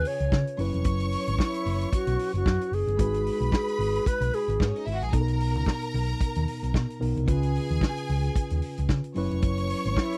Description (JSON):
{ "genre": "disco", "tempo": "112 BPM", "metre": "4/4", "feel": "swing 56% on 16ths", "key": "B major", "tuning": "A4 = 440 Hz", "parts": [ { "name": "bright reedy wooden-headed alto flute", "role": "melody", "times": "0.0-4.9, 10.0-10.2 s", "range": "E4 to C#5", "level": "-31 LUFS", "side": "equal", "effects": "none" }, { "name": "clear studio string section", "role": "second line", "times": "0.0-10.2 s", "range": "B3 to C#6", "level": "-38 LUFS", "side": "equal", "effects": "none" }, { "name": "mellow tine electric piano", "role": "accompaniment", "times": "0.0-10.2 s", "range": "B2 to B4", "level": "-35 LUFS", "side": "equal", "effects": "none" }, { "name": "warm soul drum kit", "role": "drums", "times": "0.0-10.2 s", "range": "hi-hat, kick drum, snare drum", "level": "-29 LUFS", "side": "equal", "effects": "none" }, { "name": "hollow-body short-scale picked electric bass", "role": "bass", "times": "0.2-9.9 s", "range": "E#1 to C#3", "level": "-30 LUFS", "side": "equal", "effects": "none" } ], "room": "little or no reverb", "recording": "dry, close 1970s-style studio recording", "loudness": "-27 LUFS", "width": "mono", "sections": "0.0-10.2 A section", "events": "none", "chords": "0.0 C#7; 0.6 F#7sus4; 3.0 G#m7; 5.1 Bmaj7; 7.3 C#7; 9.2 F#7sus4", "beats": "0.32 | 0.85 1.39 1.92 2.46 | 2.99 3.53 4.06 4.60 | 5.13 5.67 6.21 6.74 | 7.28 7.82 8.35 8.89 | 9.43 9.97" }